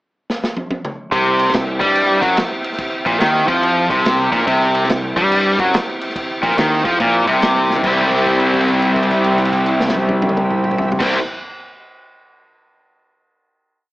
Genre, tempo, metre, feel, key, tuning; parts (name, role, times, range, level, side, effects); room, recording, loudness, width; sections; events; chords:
blues rock power trio and southern rock; 143 BPM; 4/4; swing 65% on 8ths; C mixolydian; A4 = 437 Hz
vintage drum kit; drums; 0.3-11.1 s; crash cymbal, kick drum, snare drum, toms; -22 LUFS; equal
overdriven tonewheel organ; sustained chords; 1.1-11.2 s; C4 to E5; -26 LUFS; right 1 dB
cranked stack guitar; riff; 1.1-11.2 s; Bb2 to E4; -15 LUFS; equal; overdrive, spring reverb
fuzz fingered electric bass; bass; 1.1-11.2 s; Bb1 to G2; -23 LUFS; equal; overdrive
moderate club reverb, RT60 0.7 s; AM radio sound; -14 LUFS; side -18 dB against mid
0.0-1.1 pickup bar; 1.1-7.8 riff; 7.8-11.2 final chord
drum fill 0.3-1.1, 7.6; held note 7.8-11.0
0.0 N.C.; 1.1 C